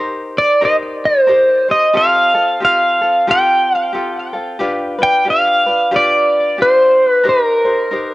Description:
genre	Hawaiian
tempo	90 BPM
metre	4/4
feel	swing 60% on 8ths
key	unclear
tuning	A4 = 440 Hz
part	tenor ukulele	accompaniment	0.0-8.1 s	C4 to C5	-21 LUFS	left 2 dB	none
part	pedal steel guitar	melody	0.4-8.1 s	Bb4 to G5	-12 LUFS	equal	tape echo
room	light reverb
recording	home recording on cassette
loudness	-11 LUFS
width	side -18 dB against mid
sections	0.0-8.1 A section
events	none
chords	0.0 Eb6; 1.9 Fadd9; 4.6 G7; 7.3 Cm7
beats	0.62 1.29 | 1.95 2.61 3.27 3.94 | 4.60 5.26 5.93 6.59 | 7.26 7.92

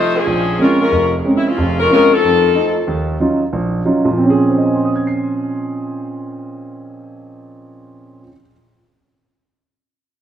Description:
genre	jazz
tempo	185 BPM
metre	4/4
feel	swing 62% on 8ths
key	Bb minor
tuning	A4 = 440 Hz
part	warm saxophone section	melody	0.0-2.8 s	F3 to C5	-14 LUFS	left 4 dB	none
part	warm grand piano	accompaniment	0.0-8.5 s	F1 to C7	-16 LUFS	right 2 dB	none
room	wet echo chamber reverb, RT60 1.9 s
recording	heard from further back in the room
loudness	-13 LUFS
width	side -10 dB against mid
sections	0.0-2.9 A section; 2.9-4.2 B section; 4.2-6.8 C section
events	none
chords	0.3 Bbm9; 2.2 F7; 2.9 Ebm9; 4.2 Bbm9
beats	| 0.26 0.59 0.91 1.24 | 1.56 1.89 2.21 2.54 | 2.87 3.19 3.51 3.84 | 4.16 4.49 4.81 5.14 | 5.46 5.79 6.11 6.43

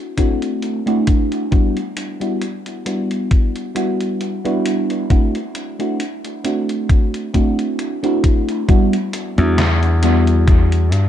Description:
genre	vaporwave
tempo	67 BPM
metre	4/4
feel	swing 55% on 16ths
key	E minor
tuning	A4 = 439 Hz
part	mellow FM electric piano	accompaniment	0.0-10.9 s	G3 to F#4	-19 LUFS	equal	phaser, lush chorus, dub echo
part	electronic kick drum	drums	0.2-10.7 s	none	-14 LUFS	left 1 dB	vintage 12-bit sampler grit
part	gated 80s digital drum machine	drums	0.2-11.1 s	hi-hat, snare drum	-27 LUFS	left 1 dB	gated reverb, gated reverb snare, overdrive, vintage 12-bit sampler grit, dub echo
part	glassy slap bass	bass	9.4-11.1 s	E2 to G2	-14 LUFS	left 1 dB	none
room	light reverb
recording	echo-heavy mix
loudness	-15 LUFS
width	side -10 dB against mid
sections	0.0-8.7 A section; 8.7-11.1 B section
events	none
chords	0.0 D7; 1.5 Em7; 5.1 D7; 8.7 Em7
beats	0.63 | 1.52 2.42 3.31 4.21 | 5.11 6.00 6.90 7.79 | 8.69 9.58 10.48

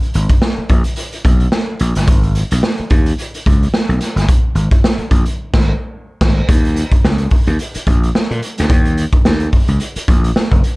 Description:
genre	funk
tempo	109 BPM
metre	4/4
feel	swing 56% on 16ths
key	unclear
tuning	A4 = 438 Hz
part	raw garage drum kit	drums	0.0-10.8 s	crash cymbal, hi-hat, kick drum, snare drum	-13 LUFS	equal	none
part	gritty slap bass	bass	0.1-10.6 s	Gb1 to Bb2	-16 LUFS	equal	overdrive
room	little or no reverb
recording	dark, warm production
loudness	-12 LUFS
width	side -24 dB against mid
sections	0.0-6.5 A section; 6.5-10.8 B section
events	band accent 5.4-6.5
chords	none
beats	0.42 0.97 1.52 | 2.08 2.63 3.18 3.73 | 4.28 4.83 5.38 5.94 | 6.49 7.04 7.59 8.15 | 8.70 9.25 9.80 10.36

